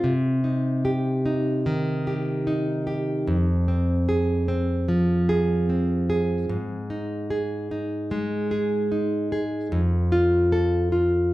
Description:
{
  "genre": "pop",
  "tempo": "74 BPM",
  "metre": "4/4",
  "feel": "straight",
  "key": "unclear",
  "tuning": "A4 = 441 Hz",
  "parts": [
    { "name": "nylon-string guitar", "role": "solo", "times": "0.0-11.3 s", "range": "F2 to A4", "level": "-21 LUFS", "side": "equal", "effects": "none" }
  ],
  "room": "wet large studio reverb, RT60 1.0 s",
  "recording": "band playing live in one room",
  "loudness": "-21 LUFS",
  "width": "side -16 dB against mid",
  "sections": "0.0-11.3 A section",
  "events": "none",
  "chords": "0.0 Cm; 3.3 Fm; 6.5 Ab5; 9.7 F",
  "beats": "| 0.04 0.86 1.67 2.47 | 3.28 4.08 4.89 5.69 | 6.50 7.30 8.11 8.91 | 9.72 10.52 11.33"
}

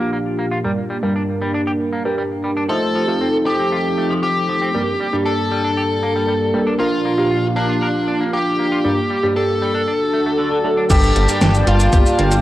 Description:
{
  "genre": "synthwave",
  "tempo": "117 BPM",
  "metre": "4/4",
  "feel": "straight",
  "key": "G minor",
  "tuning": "A4 = 442 Hz",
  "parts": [
    { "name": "warm analog pad", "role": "sustained chords", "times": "0.0-12.4 s", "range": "Bb2 to A5", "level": "-22 LUFS", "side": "equal", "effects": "chorus, sidechain pumping, cassette tape" },
    { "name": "clean electric guitar", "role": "riff", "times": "0.0-12.4 s", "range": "D3 to Bb4", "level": "-27 LUFS", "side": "equal", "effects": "lush chorus, low-pass filter, cassette tape, tape echo" },
    { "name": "chorused polysynth", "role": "stabs", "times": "0.0-12.4 s", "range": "G2 to C5", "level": "-22 LUFS", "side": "right 1 dB", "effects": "cassette tape" },
    { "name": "dark smooth lead guitar", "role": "melody", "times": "2.7-12.3 s", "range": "D4 to A4", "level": "-20 LUFS", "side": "left 1 dB", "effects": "overdrive, tape echo" },
    { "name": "airy dreamy lead", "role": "second line", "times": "10.9-12.3 s", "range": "F5 to G5", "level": "-24 LUFS", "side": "equal", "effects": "chorus, cassette tape, tape echo" },
    { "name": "chorused synth bass", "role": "bass", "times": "10.9-12.4 s", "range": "G1", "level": "-15 LUFS", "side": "equal", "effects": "sidechain pumping" },
    { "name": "electronic kick drum", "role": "drums", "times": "10.9-12.0 s", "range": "none", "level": "-14 LUFS", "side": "equal", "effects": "overdrive, cassette tape" },
    { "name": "pop drum kit", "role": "drums", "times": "10.9-12.4 s", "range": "crash cymbal, hi-hat, shaker, snare drum", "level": "-21 LUFS", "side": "equal", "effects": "low-pass filter on cymbals, cassette tape, low-pass filter on hats, low-pass filter on perc, low-pass filter on snare" }
  ],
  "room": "moderate lush hall reverb, RT60 1.7 s, digital ambience",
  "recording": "home recording on cassette",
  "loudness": "-15 LUFS",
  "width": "side -14 dB against mid",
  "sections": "0.0-10.9 A section; 10.9-12.4 B section",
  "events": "filter sweep on analog synth pad 0.0-10.9",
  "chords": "0.0 Bb; 0.6 Gm; 2.7 F7; 4.7 Gm; 6.8 Bb; 8.8 Gm; 9.9 D; 10.9 Gmadd9",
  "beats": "0.13 | 0.64 1.16 1.67 2.18 | 2.69 3.21 3.72 4.23 | 4.75 5.26 5.77 6.29 | 6.80 7.31 7.82 8.34 | 8.85 9.36 9.87 10.39 | 10.90 11.41 11.93"
}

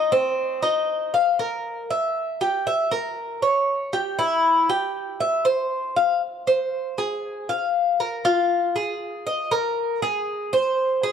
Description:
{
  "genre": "latin",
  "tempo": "118 BPM",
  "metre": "4/4",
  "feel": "straight",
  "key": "F minor",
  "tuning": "A4 = 440 Hz",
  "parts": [
    { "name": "Cuban tres", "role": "solo", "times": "0.0-11.1 s", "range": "C4 to F5", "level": "-20 LUFS", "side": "left 1 dB", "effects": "none" }
  ],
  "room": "moderate plate reverb, RT60 2.9 s",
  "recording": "dark, warm production",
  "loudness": "-21 LUFS",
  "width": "side -7 dB against mid",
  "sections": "0.0-6.2 A section; 6.2-11.1 B section",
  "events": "none",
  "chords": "none",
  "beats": "| 0.11 0.62 1.13 1.64 | 2.15 2.66 3.17 3.68 | 4.18 4.69 5.20 5.71 | 6.22 6.72 7.23 7.74 | 8.25 8.75 9.26 9.77 | 10.28 10.78"
}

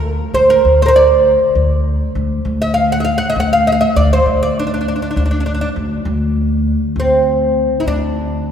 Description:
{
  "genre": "Arabic maqam ensemble",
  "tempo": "66 BPM (dotted quarters)",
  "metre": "6/8",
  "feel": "straight",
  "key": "D maqam saba",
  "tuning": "A4 = 441 Hz",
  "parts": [
    { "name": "oud", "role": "melody", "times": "0.0-8.5 s", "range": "C4 to F#5", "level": "-14 LUFS", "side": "right 1 dB", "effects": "none" },
    { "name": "upright bass", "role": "bass", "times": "0.0-8.5 s", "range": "D2", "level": "-16 LUFS", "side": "left 1 dB", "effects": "none" }
  ],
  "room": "wet church reverb, RT60 3.3 s",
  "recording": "recorded in a church or concert hall",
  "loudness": "-12 LUFS",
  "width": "side -8 dB against mid",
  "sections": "0.0-7.0 A section; 7.0-8.5 B section",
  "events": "none",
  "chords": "none",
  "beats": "0.65 | 1.56 2.46 | 3.36 4.27 | 5.17 6.07 | 6.97 7.88"
}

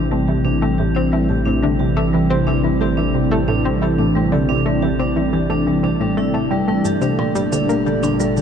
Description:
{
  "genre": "ambient, sequencer-driven space music",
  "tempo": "89 BPM",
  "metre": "4/4",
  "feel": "straight",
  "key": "unclear",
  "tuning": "A4 = 440 Hz",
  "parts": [
    { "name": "lush unison pad", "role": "sustained chords", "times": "0.0-8.4 s", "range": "Bb2 to A4", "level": "-19 LUFS", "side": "equal", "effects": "chorus" },
    { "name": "analog pluck", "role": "riff", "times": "0.0-8.4 s", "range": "G2 to E4", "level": "-21 LUFS", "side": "left 1 dB", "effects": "chorus, ping-pong delay" },
    { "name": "warm sub bass", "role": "bass", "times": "0.0-8.4 s", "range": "G1 to A1", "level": "-25 LUFS", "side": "equal", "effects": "none" },
    { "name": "pulsing gated texture", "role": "texture", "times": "0.0-8.4 s", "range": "D5", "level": "-34 LUFS", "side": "right 6 dB", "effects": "none" },
    { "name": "vibraphone with hard mallets", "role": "arpeggios", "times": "0.1-8.4 s", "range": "G3 to G4", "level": "-23 LUFS", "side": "moving between left 2 dB and right 5 dB", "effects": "auto-pan, low-pass filter, ping-pong delay" },
    { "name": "shaker and percussion blips", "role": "percussion", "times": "6.8-8.4 s", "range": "none", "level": "-33 LUFS", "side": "right 4 dB", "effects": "ping-pong delay" }
  ],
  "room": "wet huge ambient reverb, RT60 8.2 s",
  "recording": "dark, warm production",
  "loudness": "-15 LUFS",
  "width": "side -8 dB against mid",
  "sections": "0.0-8.4 A section",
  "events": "none",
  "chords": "0.0 Am; 6.9 Gmadd9",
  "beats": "0.11 0.78 | 1.46 2.13 2.81 3.48 | 4.15 4.83 5.50 6.18 | 6.85 7.53 8.20"
}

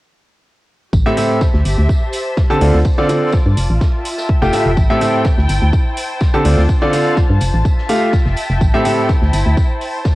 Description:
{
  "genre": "piano house",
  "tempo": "125 BPM",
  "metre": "4/4",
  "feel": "swing 54% on 16ths",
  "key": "A minor",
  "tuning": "A4 = 438 Hz",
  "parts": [
    { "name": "organ-like FM bass", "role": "bass", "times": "0.9-9.6 s", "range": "F1 to G2", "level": "-14 LUFS", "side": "equal", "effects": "sidechain pumping" },
    { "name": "electronic kick drum", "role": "drums", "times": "0.9-10.2 s", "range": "none", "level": "-14 LUFS", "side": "equal", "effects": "cassette tape" },
    { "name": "oversized low-tuned drum kit", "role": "drums", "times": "0.9-10.2 s", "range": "hi-hat, snare drum, tambourine", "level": "-34 LUFS", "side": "equal", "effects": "sidechain pumping on hats, high-pass filter on hats, cassette tape, high-pass filter on snare, sidechain pumping on perc, high-pass filter on perc, high-pass filter on room" },
    { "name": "muted studio string section", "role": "texture", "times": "0.9-10.2 s", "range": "D4 to A5", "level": "-23 LUFS", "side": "left 1 dB", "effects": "sidechain pumping, cassette tape" },
    { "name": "clear concert grand piano", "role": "riff", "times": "1.1-9.1 s", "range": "A2 to A5", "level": "-16 LUFS", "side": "equal", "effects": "sidechain pumping, cassette tape, tape echo" },
    { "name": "electronic hi-hat", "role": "drums", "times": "1.2-9.9 s", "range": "none", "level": "-30 LUFS", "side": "right 1 dB", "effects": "cassette tape" }
  ],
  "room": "light reverb",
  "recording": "home recording on cassette",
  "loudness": "-12 LUFS",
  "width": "side -18 dB against mid",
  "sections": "0.9-10.2 A section",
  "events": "none",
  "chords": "0.9 Am7; 2.6 Dm7; 3.6 Fmaj9; 4.8 Am7; 6.5 Dm7; 7.4 Fmaj9; 8.6 Am7",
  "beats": "| 0.93 1.41 1.89 2.37 | 2.85 3.33 3.81 4.29 | 4.77 5.25 5.73 6.21 | 6.69 7.17 7.65 8.13 | 8.61 9.09 9.57 10.05"
}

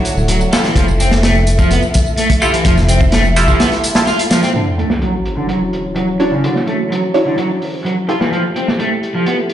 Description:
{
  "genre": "breakbeat, breaks",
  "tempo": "127 BPM",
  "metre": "4/4",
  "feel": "straight",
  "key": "D major",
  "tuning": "A4 = 440 Hz",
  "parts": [
    { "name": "dark analog pad", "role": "sustained chords", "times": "0.0-9.5 s", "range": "E4 to F#5", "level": "-22 LUFS", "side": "equal", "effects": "chorus, vintage 12-bit sampler grit, sidechain pumping" },
    { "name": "band-passed chord stab", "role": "stabs", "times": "0.0-8.2 s", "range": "D4 to C#5", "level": "-19 LUFS", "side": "right 1 dB", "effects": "phaser, ping-pong delay" },
    { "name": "crunchy breakbeat drum kit", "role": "drums", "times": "0.0-9.5 s", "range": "hi-hat, kick drum, snare drum", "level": "-17 LUFS", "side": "equal", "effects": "low-pass filter on kick, low-pass filter on hats, low-pass filter on snare, low-pass filter on room" },
    { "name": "tambourine", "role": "drums", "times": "0.1-4.5 s", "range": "none", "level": "-27 LUFS", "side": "right 3 dB", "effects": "low-pass filter on perc" },
    { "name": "dark detuned saw bass", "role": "bass", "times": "0.2-3.5 s", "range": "D1 to F1", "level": "-14 LUFS", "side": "equal", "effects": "none" },
    { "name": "crunchy overdriven guitar", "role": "riff", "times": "0.3-9.4 s", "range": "C#3 to F4", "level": "-17 LUFS", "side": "equal", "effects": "low-pass filter, ping-pong delay" },
    { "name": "sub drop", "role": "sound effects", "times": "4.5-6.4 s", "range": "none", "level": "-23 LUFS", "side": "equal", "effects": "none" }
  ],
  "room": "moderate plate reverb, RT60 1.6 s, small room ambience",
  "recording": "played on a big sound system in a bare room, large studio reverb, nothing above 10.8 kHz",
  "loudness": "-12 LUFS",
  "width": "side -11 dB against mid",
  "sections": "0.0-4.5 A section; 4.5-9.5 B section",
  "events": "kick drops out 3.6-4.5; impact 4.5-6.4; filter sweep on overdriven electric guitar 4.5-9.5",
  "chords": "0.0 Dmaj9; 0.5 Fmaj9; 4.5 Dmaj9; 8.1 Fmaj9",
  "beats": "0.29 | 0.76 1.24 1.71 2.18 | 2.65 3.13 3.60 4.07 | 4.54 5.02 5.49 5.96 | 6.43 6.91 7.38 7.85 | 8.32 8.79 9.27"
}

